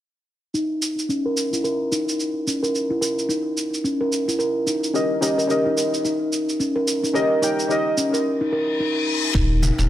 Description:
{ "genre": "organic downtempo", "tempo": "109 BPM", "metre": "4/4", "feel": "swing 60% on 16ths", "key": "unclear", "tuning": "A4 = 441 Hz", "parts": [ { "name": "steel tongue drum", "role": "arpeggios", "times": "0.5-9.4 s", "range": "Db4 to Bb4", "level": "-22 LUFS", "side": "equal", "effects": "low-pass filter, tape echo" }, { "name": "electronic shaker and hi-hat", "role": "drums", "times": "0.5-9.9 s", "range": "none", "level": "-28 LUFS", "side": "right 2 dB", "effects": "none" }, { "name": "deep mellow chord stab", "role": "accompaniment", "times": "4.9-8.3 s", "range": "Db4 to G5", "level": "-22 LUFS", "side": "left 1 dB", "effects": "chorus, cassette tape, sidechain pumping, tape echo" }, { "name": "reverse cymbal", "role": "sound effects", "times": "8.5-9.3 s", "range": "none", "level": "-26 LUFS", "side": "left 6 dB", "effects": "none" }, { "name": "warm sub bass", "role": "bass", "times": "9.3-9.9 s", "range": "Eb1", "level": "-18 LUFS", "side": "equal", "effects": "sidechain pumping" }, { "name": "electronic kick drum", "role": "drums", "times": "9.3-9.5 s", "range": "none", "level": "-22 LUFS", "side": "equal", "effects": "none" }, { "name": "cajon", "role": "percussion", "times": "9.6-9.9 s", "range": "none", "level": "-26 LUFS", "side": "left 2 dB", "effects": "none" } ], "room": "moderate lush hall reverb, RT60 1.9 s, digital ambience", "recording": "none", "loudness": "-20 LUFS", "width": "side -12 dB against mid", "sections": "0.5-9.3 A section", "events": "filter sweep on steel tongue drum 0.5-9.3; break 8.2-9.3; reverse cymbal 8.5-9.3", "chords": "0.5 N.C.; 4.9 Eb7; 9.3 N.C." }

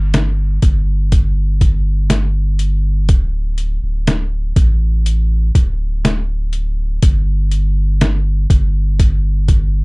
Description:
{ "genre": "pop ballad", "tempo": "61 BPM", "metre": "4/4", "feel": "straight", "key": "unclear", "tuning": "A4 = 438 Hz", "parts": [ { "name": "warm sub bass", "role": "bass", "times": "0.0-9.8 s", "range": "D1 to A1", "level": "-15 LUFS", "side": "equal", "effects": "none" }, { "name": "trip hop sampler-style drum kit", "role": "drums", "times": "0.1-9.7 s", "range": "hi-hat, kick drum, snare drum", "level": "-13 LUFS", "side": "equal", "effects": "none" } ], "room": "little or no reverb", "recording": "dry, close 1970s-style studio recording", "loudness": "-13 LUFS", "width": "side -31 dB against mid", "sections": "0.0-9.8 A section", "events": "none", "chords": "none" }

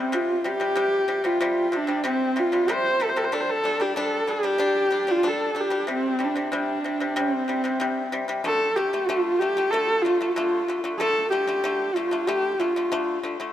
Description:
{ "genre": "mongolian traditional, Mongolian folk", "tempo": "94 BPM", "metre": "4/4", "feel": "straight", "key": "unclear", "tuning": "A4 = 440 Hz", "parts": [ { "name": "rich horsehead fiddle", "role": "melody", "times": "0.0-13.2 s", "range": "C4 to C5", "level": "-23 LUFS", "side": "equal", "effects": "none" }, { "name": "pipa", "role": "arpeggios", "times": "0.0-13.5 s", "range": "C3 to D4", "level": "-28 LUFS", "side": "left 2 dB", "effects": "none" } ], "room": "moderate huge ambient reverb, RT60 4.3 s", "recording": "none", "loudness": "-21 LUFS", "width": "side -11 dB against mid", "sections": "0.0-8.4 A section; 8.4-13.5 B section", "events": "none", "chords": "0.0 C5; 3.3 G5; 5.9 C5; 8.4 D5" }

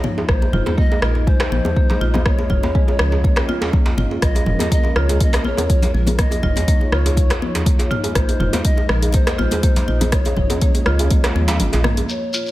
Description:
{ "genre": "afro house", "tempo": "122 BPM", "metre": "4/4", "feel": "swing 54% on 16ths", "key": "unclear", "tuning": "A4 = 439 Hz", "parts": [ { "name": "breathy mellow polished pan flute", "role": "melody", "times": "0.0-12.5 s", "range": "Bb4 to Eb5", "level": "-27 LUFS", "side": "left 2 dB", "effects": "analog delay" }, { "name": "dark analog pad", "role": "sustained chords", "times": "0.0-12.5 s", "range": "Ab3 to Eb5", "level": "-27 LUFS", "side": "right 1 dB", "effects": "chorus, sidechain pumping" }, { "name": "buzzing marimba with medium hard mallets", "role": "arpeggios", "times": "0.0-12.5 s", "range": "F3 to F4", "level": "-28 LUFS", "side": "equal", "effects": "sidechain pumping, low-pass filter, analog delay" }, { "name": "deep house drum kit", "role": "drums", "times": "0.0-12.2 s", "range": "crash cymbal, hi-hat, rim click, toms", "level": "-24 LUFS", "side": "equal", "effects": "overdrive, low-pass filter on toms, low-pass filter on snare, low-pass filter on hats, low-pass filter on cymbals, low-pass filter on room" }, { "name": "congas", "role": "percussion", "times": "0.0-11.9 s", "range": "none", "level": "-26 LUFS", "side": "left 3 dB", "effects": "none" }, { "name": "djembe", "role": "percussion", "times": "0.2-12.1 s", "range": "none", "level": "-26 LUFS", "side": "right 2 dB", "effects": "none" }, { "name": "woody FM bass", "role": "bass", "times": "0.3-12.0 s", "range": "F1 to Eb2", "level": "-20 LUFS", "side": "equal", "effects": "sidechain pumping" }, { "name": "electronic kick drum", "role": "drums", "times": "0.3-11.2 s", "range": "none", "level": "-17 LUFS", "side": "equal", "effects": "overdrive" }, { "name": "shekere", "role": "percussion", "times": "12.1-12.5 s", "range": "none", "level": "-24 LUFS", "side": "left 2 dB", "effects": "none" } ], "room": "light reverb, studio reverb", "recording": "none", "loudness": "-15 LUFS", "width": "side -16 dB against mid", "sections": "0.0-12.1 A section", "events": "kick drops out 11.6-12.1", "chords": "0.3 Ab; 2.3 Db; 4.2 Bbm7; 6.2 Ebsus2; 8.2 Ab; 10.1 Db" }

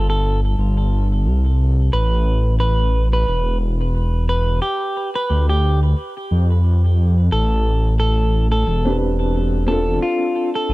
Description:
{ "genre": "trip hop", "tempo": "89 BPM", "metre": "4/4", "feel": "swing 58% on 16ths", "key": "A minor", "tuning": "A4 = 440 Hz", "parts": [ { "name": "clean electric guitar", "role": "melody", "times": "0.0-10.7 s", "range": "F4 to B4", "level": "-23 LUFS", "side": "equal", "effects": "tape echo" }, { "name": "dark detuned saw bass", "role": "bass", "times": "0.0-10.7 s", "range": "E1 to F2", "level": "-16 LUFS", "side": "equal", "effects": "none" }, { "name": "felt-muted upright piano", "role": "accompaniment", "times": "8.9-10.7 s", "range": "C4 to B4", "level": "-21 LUFS", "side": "equal", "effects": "tremolo, tape echo" } ], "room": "small room ambience", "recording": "echo-heavy mix", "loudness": "-16 LUFS", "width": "side -19 dB against mid", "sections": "0.0-10.7 A section", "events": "none", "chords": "0.0 Gsus4; 1.9 A5; 4.6 Dm; 7.3 Am11; 10.0 G7sus4 (rootless)" }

